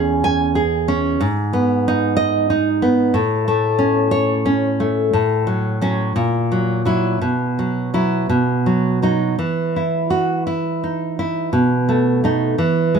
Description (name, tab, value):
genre	romantic piece for solo classical guitar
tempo	54-63 BPM (dotted quarters)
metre	6/8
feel	rubato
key	E major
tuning	A4 = 439 Hz
part	nylon-string guitar	solo	0.0-13.0 s	E2 to G#5	-16 LUFS	right 1 dB	none
room	light reverb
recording	close, detailed microphones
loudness	-16 LUFS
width	side -6 dB against mid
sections	0.0-9.4 A section; 9.4-13.0 B section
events	none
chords	0.0 C#m/E; 1.2 G#m; 3.1 A; 5.1 F#m/A; 6.1 F#7/A#; 7.2 Bsus4; 8.3 B; 9.4 Esus2; 11.5 B7